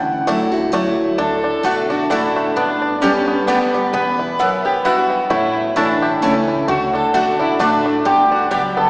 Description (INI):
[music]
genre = bluegrass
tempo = 131 BPM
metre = 3/4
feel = swing 56% on 8ths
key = D major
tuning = A4 = 444 Hz
[part]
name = picked steel-string acoustic guitar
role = accompaniment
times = 0.0-8.9 s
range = E2 to G4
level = -20 LUFS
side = equal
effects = none
[part]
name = mandolin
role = stabs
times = 0.0-8.6 s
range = A3 to A5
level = -22 LUFS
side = equal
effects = none
[part]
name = upright bass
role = bass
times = 0.0-8.9 s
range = E1 to D2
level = -34 LUFS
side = equal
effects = none
[part]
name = bluegrass banjo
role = melody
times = 0.3-8.9 s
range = D3 to G4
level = -22 LUFS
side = equal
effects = none
[part]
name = lap resonator guitar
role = melody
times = 1.2-8.9 s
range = B3 to B4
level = -18 LUFS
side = equal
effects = none
[part]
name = rich fiddle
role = second line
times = 1.2-8.9 s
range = B3 to B4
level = -24 LUFS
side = equal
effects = none
[sound]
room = wet church reverb, RT60 3.2 s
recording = recorded in a church or concert hall, small speaker sound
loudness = -14 LUFS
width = side -28 dB against mid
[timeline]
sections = 0.0-1.2 A section; 1.2-8.9 B section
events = mandolin solo 0.0-1.2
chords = 0.0 Dadd9; 1.2 D; 2.6 G; 3.9 Esus2; 5.3 A; 6.7 D; 8.1 G